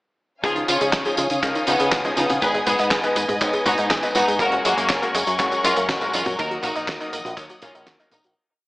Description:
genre	italo disco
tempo	121 BPM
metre	4/4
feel	straight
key	Eb minor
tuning	A4 = 440 Hz
part	clear studio violin section	melody	0.4-8.2 s	Bb3 to Cb5	-24 LUFS	equal	tape echo
part	warm studio string section	sustained chords	0.4-8.3 s	Bb4 to Eb6	-26 LUFS	left 1 dB	none
part	analog pluck	arpeggios	0.4-8.3 s	Db3 to Ab4	-28 LUFS	right 1 dB	chorus, tape echo
part	bright electric grand piano	stabs	0.4-8.3 s	F3 to Db5	-28 LUFS	left 1 dB	none
part	fingered electric bass with an envelope filter	bass	0.4-8.3 s	Gb1 to Db3	-30 LUFS	equal	tube saturation
part	damped 70s drum kit	drums	0.4-8.3 s	handclaps, hi-hat, snare drum, tambourine, toms	-25 LUFS	equal	small room ambience, gated reverb
part	kick drum	drums	0.4-8.0 s	none	-28 LUFS	equal	small room ambience
room	moderate plate reverb, RT60 1.0 s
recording	AM radio sound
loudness	-18 LUFS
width	side -19 dB against mid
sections	0.4-8.4 chorus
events	fade-out 5.7-8.4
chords	0.4 Dbadd9; 2.4 Abm; 4.4 Gbadd9; 6.4 Ebm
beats	| 0.43 0.93 1.43 1.92 | 2.42 2.92 3.41 3.91 | 4.40 4.90 5.39 5.89 | 6.39 6.88 7.38 7.87

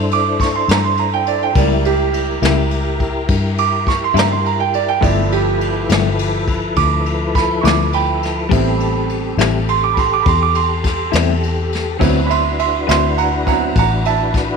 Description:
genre	slow blues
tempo	69 BPM (dotted quarters)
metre	12/8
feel	straight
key	G mixolydian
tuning	A4 = 439 Hz
part	tonewheel organ	sustained chords	0.0-14.6 s	F3 to C5	-22 LUFS	left 2 dB	chorus vibrato, slow rotary speaker
part	vintage muted fingered electric bass	bass	0.0-14.6 s	G1 to G2	-19 LUFS	left 2 dB	none
part	bright concert grand piano	accompaniment	0.1-14.3 s	F3 to D6	-18 LUFS	right 12 dB	none
part	jazz brush drum kit	drums	0.1-14.5 s	kick drum, ride cymbal, snare drum	-21 LUFS	left 2 dB	none
part	electric guitar through a small old amp	accompaniment	1.6-13.1 s	G2 to B4	-22 LUFS	left 14 dB	tremolo
room	light reverb, studio reverb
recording	1960s-style stereo with parts hard left and right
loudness	-14 LUFS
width	side -5 dB against mid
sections	0.0-14.6 A section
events	grand piano solo 0.0-14.6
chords	0.0 C13; 1.6 C#dim7; 5.0 G13; 8.5 Am7; 12.0 D13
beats	0.69 | 1.56 2.43 3.30 4.17 | 5.04 5.91 6.78 7.66 | 8.53 9.40 10.27 11.14 | 12.02 12.89 13.77

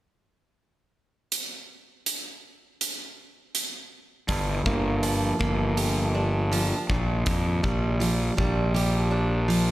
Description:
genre	quiet-loud alternative rock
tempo	81 BPM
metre	4/4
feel	straight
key	G minor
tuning	A4 = 439 Hz
part	big rock drum kit	drums	1.3-9.7 s	hi-hat, kick drum	-29 LUFS	equal	none
part	picked steel-string acoustic guitar	arpeggios	4.3-9.7 s	G2 to G4	-27 LUFS	right 1 dB	none
part	fuzz fingered electric bass	bass	4.3-9.7 s	G1 to F2	-25 LUFS	equal	overdrive
room	light reverb, small room ambience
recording	none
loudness	-23 LUFS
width	side -15 dB against mid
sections	1.3-4.3 A section; 4.3-9.7 B section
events	none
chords	1.3 N.C.; 4.3 Gm7; 6.9 Bb6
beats	| 1.33 2.07 2.81 3.55 | 4.29 5.04 5.78 6.52 | 7.27 8.01 8.75 9.50

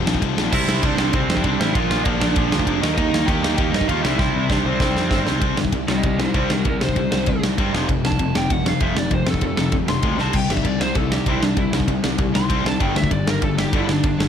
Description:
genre	punk rock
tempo	195 BPM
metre	4/4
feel	straight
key	C major from 5.4 s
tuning	A4 = 439 Hz
part	distorted electric guitar	riff	0.0-14.3 s	F2 to Eb4	-24 LUFS	left 12 dB	overdrive
part	fuzz picked electric bass	bass	0.0-14.3 s	F1 to G2	-24 LUFS	equal	overdrive
part	big rock drum kit	drums	0.1-14.3 s	crash cymbal, kick drum, ride cymbal, snare drum	-21 LUFS	right 1 dB	none
part	lead guitar through a small cranked amp	melody	0.5-14.2 s	C4 to C6	-25 LUFS	right 1 dB	overdrive
part	raw garage guitar	riff	0.5-14.3 s	F2 to Eb4	-29 LUFS	right 16 dB	overdrive
room	light reverb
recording	none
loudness	-17 LUFS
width	side -8 dB against mid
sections	0.0-5.4 A section; 5.4-14.3 B section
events	drum fill 4.2-5.4, 10.2; lead electric guitar solo 5.4-14.3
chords	0.0 F5; 0.5 C; 1.8 Bb; 2.8 Eb; 4.0 C; 5.4 C5; 7.7 F; 10.2 C5; 12.8 G5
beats	0.22 | 0.53 0.83 1.14 1.45 | 1.75 2.06 2.37 2.67 | 2.98 3.28 3.59 3.90 | 4.20 4.51 4.82 5.12 | 5.43 5.74 6.04 6.35 | 6.66 6.96 7.27 7.58 | 7.89 8.20 8.50 8.81 | 9.12 9.43 9.73 10.04 | 10.35 10.65 10.96 11.27 | 11.58 11.88 12.19 12.50 | 12.81 13.11 13.42 13.73 | 14.04

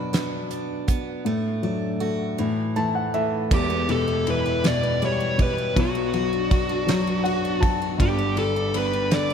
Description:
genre	six-eight pop ballad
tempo	54 BPM (dotted quarters)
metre	6/8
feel	straight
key	unclear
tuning	A4 = 440 Hz
part	dark grand piano	accompaniment	0.0-9.3 s	E1 to A5	-25 LUFS	left 2 dB	none
part	picked steel-string acoustic guitar	arpeggios	0.0-9.3 s	E3 to G4	-30 LUFS	right 7 dB	ping-pong delay
part	damped 70s drum kit	drums	0.1-9.3 s	crash cymbal, hi-hat, kick drum, ride cymbal, snare drum	-25 LUFS	right 1 dB	none
part	fuzz lead guitar	melody	3.5-9.3 s	F#4 to D5	-25 LUFS	left 1 dB	distortion, ping-pong delay
room	moderate lush hall reverb, RT60 2.5 s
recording	dreamy mix soaked in reverb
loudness	-21 LUFS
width	side -7 dB against mid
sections	0.0-3.5 A section; 3.5-9.3 B section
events	grand piano fill 2.4-3.5, 6.9-8.0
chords	0.0 Bm; 1.3 D/A; 2.4 A5; 3.5 Em; 5.8 Bm; 8.0 G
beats	0.14 | 1.26 2.39 | 3.52 4.64 | 5.76 6.88 | 8.00 9.11

